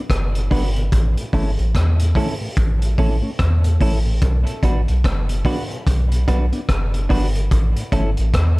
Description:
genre	dub reggae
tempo	73 BPM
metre	4/4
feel	swing 60% on 16ths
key	B minor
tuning	A4 = 440 Hz
part	soft dub sub bass	bass	0.1-8.6 s	F#1 to E2	-18 LUFS	equal	none
part	crunchy breakbeat drum kit	drums	0.1-8.6 s	hi-hat, kick drum, rim click	-21 LUFS	equal	none
part	mellow tonewheel organ	accompaniment	0.3-8.0 s	A2 to D4	-29 LUFS	left 1 dB	slow rotary speaker
part	clean electric guitar	accompaniment	0.5-8.1 s	C#4 to B4	-28 LUFS	right 2 dB	wide subtle chorus, dub echo
room	small room ambience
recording	dark, warm production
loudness	-16 LUFS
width	side -23 dB against mid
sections	0.0-8.6 A section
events	none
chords	0.0 Bm; 0.9 A; 4.2 Bm; 7.5 A

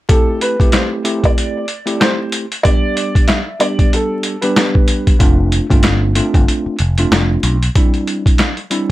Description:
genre	hip hop, boom-bap hip-hop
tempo	94 BPM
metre	4/4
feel	swing 58% on 16ths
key	A minor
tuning	A4 = 440 Hz
part	dark upright piano	melody	0.1-5.2 s	A4 to E5	-20 LUFS	right 1 dB	high-pass filter, low-pass filter, tape echo
part	tine electric piano	accompaniment	0.1-8.9 s	G3 to G4	-19 LUFS	equal	medium stereo tremolo, high-pass filter, low-pass filter
part	boom bap sampler-style drum kit	drums	0.1-8.9 s	hi-hat, kick drum, snare drum	-14 LUFS	equal	vintage 12-bit sampler grit
part	picked electric bass	bass	5.2-7.7 s	F1 to B1	-15 LUFS	equal	none
room	little or no reverb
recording	vinyl crackle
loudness	-12 LUFS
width	side -16 dB against mid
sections	0.1-8.9 A section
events	none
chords	0.1 Am7; 2.6 G; 5.2 F6; 7.8 Cadd9

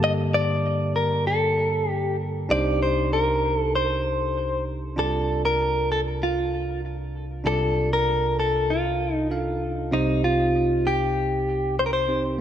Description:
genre	pop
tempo	97 BPM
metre	4/4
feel	straight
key	C dorian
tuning	A4 = 440 Hz
part	direct-recorded clean electric guitar	melody	0.0-12.2 s	Eb4 to Eb5	-23 LUFS	left 1 dB	wide subtle chorus, tape echo
part	bell-like tine electric piano	accompaniment	0.0-12.4 s	C2 to A5	-25 LUFS	right 1 dB	none
room	moderate plate reverb, RT60 2.8 s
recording	dark, warm production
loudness	-21 LUFS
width	side -10 dB against mid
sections	0.0-5.0 A section; 5.0-12.4 B section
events	none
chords	0.0 Gmadd9; 2.5 Cmadd9; 5.0 Dm/C; 9.9 Cm

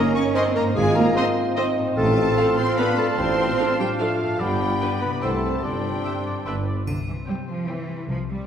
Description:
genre	cinematic, playful, whimsical film cue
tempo	148 BPM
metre	3/4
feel	straight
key	C major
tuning	A4 = 440 Hz
part	rich studio violin section	melody	0.0-8.0 s	Eb5 to G5	-37 LUFS	left 3 dB	none
part	clear oboe	second line	0.0-6.8 s	D5 to F5	-32 LUFS	right 1 dB	none
part	mellow clarinet	second line	0.0-6.5 s	F4 to Db5	-26 LUFS	equal	none
part	rich studio violin section	second line	0.0-8.0 s	C5 to Db6	-32 LUFS	left 2 dB	none
part	silver concert flute	second line	0.0-6.7 s	A5 to Db6	-32 LUFS	left 2 dB	none
part	mellow bassoon	accompaniment	0.0-6.6 s	A3 to F4	-28 LUFS	right 1 dB	none
part	rich studio viola section	accompaniment	0.0-8.0 s	C4 to C5	-32 LUFS	right 1 dB	none
part	dark French horn section	sustained chords	0.0-6.7 s	B3 to F4	-29 LUFS	left 2 dB	none
part	concert harp	arpeggios	0.0-8.5 s	G2 to Db5	-34 LUFS	left 4 dB	none
part	rich studio cello section	bass	0.0-8.5 s	D3 to Db4	-28 LUFS	right 2 dB	none
part	mellow tuba	bass	0.8-6.8 s	G1 to C2	-30 LUFS	right 1 dB	none
part	rich studio double bass section	bass	0.8-8.4 s	G1 to C2	-29 LUFS	right 2 dB	none
part	triangle	percussion	6.9-7.6 s	none	-43 LUFS	right 1 dB	none
room	wet scoring stage reverb, RT60 1.9 s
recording	heard from further back in the room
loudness	-20 LUFS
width	side -8 dB against mid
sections	0.0-6.9 A section; 6.9-8.5 B section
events	none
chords	0.0 Eb7/G; 0.8 Ab; 2.0 F/A; 3.2 Dm7/A; 4.4 G; 5.2 C; 5.6 Gsus4; 6.5 G; 6.9 C

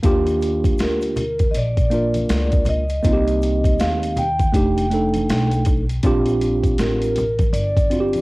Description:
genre	hip hop, jazz-hop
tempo	80 BPM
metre	4/4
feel	swing 62% on 16ths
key	unclear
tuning	A4 = 439 Hz
part	mellow tine electric piano	accompaniment	0.0-8.2 s	A3 to Bb4	-20 LUFS	right 1 dB	medium stereo tremolo, cassette tape
part	upright bass	bass	0.0-8.2 s	F1 to Eb2	-23 LUFS	equal	none
part	boom bap sampler-style drum kit	drums	0.0-8.2 s	hi-hat, kick drum, snare drum	-20 LUFS	equal	cassette tape
part	tube shaker and congas	percussion	0.0-8.2 s	none	-31 LUFS	left 1 dB	none
part	vibraphone with soft mallets	melody	0.8-8.2 s	Bb4 to G5	-23 LUFS	equal	none
room	small room ambience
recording	home recording on cassette, vinyl crackle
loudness	-16 LUFS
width	side -22 dB against mid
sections	0.0-8.2 A section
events	none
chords	0.0 Ebmaj9; 3.0 Cm7; 4.5 F13; 6.0 Bb69

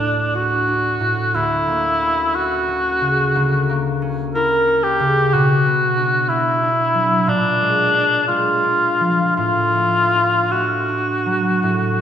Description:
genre	classical, romantic duo for cor anglais and harp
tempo	52-63 BPM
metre	4/4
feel	rubato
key	D major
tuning	A4 = 440 Hz
part	warm cor anglais	melody	0.0-12.0 s	D4 to A#4	-17 LUFS	left 1 dB	none
part	concert harp	accompaniment	0.0-12.0 s	D2 to F#4	-21 LUFS	right 1 dB	none
room	wet concert hall reverb, RT60 1.8 s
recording	minimal, uncompressed stereo recording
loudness	-15 LUFS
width	side -9 dB against mid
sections	0.0-12.0 A section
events	none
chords	0.0 D; 1.3 F#7/D; 5.3 Bm; 7.3 Bb7; 9.4 D/A

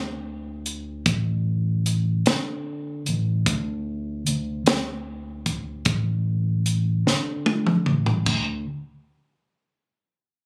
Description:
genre	slow blues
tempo	50 BPM (dotted quarters)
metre	12/8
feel	straight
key	unclear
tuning	A4 = 440 Hz
part	fingered electric bass	bass	0.0-8.6 s	A1 to D3	-27 LUFS	equal	none
part	compact cocktail drum kit	drums	0.7-8.5 s	crash cymbal, hi-hat, kick drum, snare drum, toms	-24 LUFS	equal	none
room	little or no reverb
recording	recorded on a phone in the room, club reverb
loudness	-24 LUFS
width	mono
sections	0.0-8.3 A section; 8.3-10.5 B section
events	drum fill 7.1-8.3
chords	none

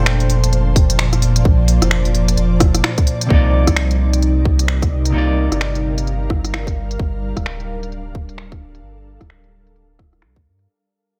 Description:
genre	future garage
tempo	130 BPM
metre	4/4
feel	swing 60% on 16ths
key	C dorian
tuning	A4 = 441 Hz
part	semi-hollow electric guitar	accompaniment	0.0-7.0 s	Bb2 to D5	-25 LUFS	equal	vintage 12-bit sampler grit, sidechain pumping, analog delay
part	ethereal airy pad	sustained chords	0.0-10.7 s	Bb2 to A5	-24 LUFS	equal	ensemble chorus, built-in reverb, sidechain pumping
part	warm sub bass	bass	0.0-10.7 s	D1 to G2	-20 LUFS	equal	tube saturation, sidechain pumping
part	organic electronic drum kit	drums	0.1-10.7 s	finger snaps, hi-hat, rim click	-23 LUFS	equal	low-pass filter on hats, studio reverb, low-pass filter on snare
part	electronic kick drum	drums	0.8-10.4 s	none	-18 LUFS	equal	studio reverb
room	light reverb, digital ambience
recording	none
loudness	-16 LUFS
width	mono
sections	0.0-3.3 A section; 3.3-10.7 B section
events	fade-out 3.3-10.7; filter sweep on drum 3.3-10.7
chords	0.0 Bbmaj9; 3.3 Cm11; 7.0 Gm9

